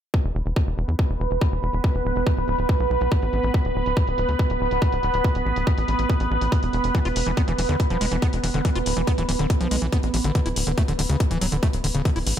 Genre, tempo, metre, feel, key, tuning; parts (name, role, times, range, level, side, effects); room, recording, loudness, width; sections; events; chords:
psychedelic trance; 141 BPM; 4/4; straight; A4 = 440 Hz
evolving wavetable pad; sustained chords; 0.9-12.4 s; B3 to B4; -26 LUFS; right 2 dB; phaser, built-in reverb, sidechain pumping
electronic hi-hat; drums; 0.1-12.4 s; -32 LUFS; left 2 dB; overdrive, low-pass filter on hats
electronic kick drum; drums; 0.1-12.1 s; -23 LUFS; equal
tight sequencer bass; bass; 0.2-12.4 s; D1 to E2; -25 LUFS; equal
overdriven acid bass; riff; 6.9-12.4 s; C#3 to F4; -27 LUFS; left 1 dB; distortion, auto-pan, sidechain pumping, ping-pong delay
light reverb, digital ambience; -20 LUFS; side -10 dB against mid
0.1-12.4 A section
0.1 D5; 6.9 E5; 10.4 D5